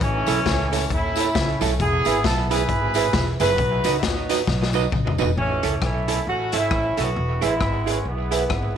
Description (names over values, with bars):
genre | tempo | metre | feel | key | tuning
ska | 134 BPM | 4/4 | swing 59% on 8ths | E major | A4 = 439 Hz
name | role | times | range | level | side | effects
warm horn section | melody | 0.0-8.8 s | E3 to B4 | -24 LUFS | equal | none
upright bass | bass | 0.0-8.8 s | E1 to D#2 | -25 LUFS | equal | none
raw garage drum kit | drums | 0.0-8.6 s | hi-hat, kick drum, rim click, snare drum, toms | -25 LUFS | left 3 dB | tape echo
archtop guitar, miked and amplified | accompaniment | 0.3-8.5 s | D#4 to E5 | -26 LUFS | right 10 dB | tape echo
tambourine | percussion | 0.3-5.3 s | none | -37 LUFS | left 15 dB | none
room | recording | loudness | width
light reverb, studio ambience | 1960s-style stereo with parts hard left and right | -19 LUFS | side -8 dB against mid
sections
0.0-5.4 A section; 5.4-8.8 B section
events
drum fill 4.5-5.4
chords
0.0 A; 1.8 E; 3.6 B; 5.4 A; 7.2 E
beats
| 0.01 0.46 0.90 1.35 | 1.80 2.24 2.69 3.13 | 3.58 4.03 4.47 4.92 | 5.37 5.81 6.26 6.71 | 7.16 7.60 8.05 8.50